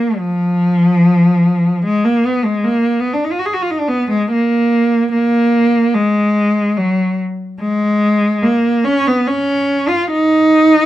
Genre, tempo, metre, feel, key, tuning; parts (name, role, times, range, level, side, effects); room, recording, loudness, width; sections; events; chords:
classical, free, expressive piece for unaccompanied cello; 72 BPM; 3/4; rubato; A4 = 443 Hz
rich cello; solo; 0.0-10.9 s; F3 to Ab4; -12 LUFS; equal
light reverb; dark, warm production; -12 LUFS; side -14 dB against mid
0.0-10.9 A section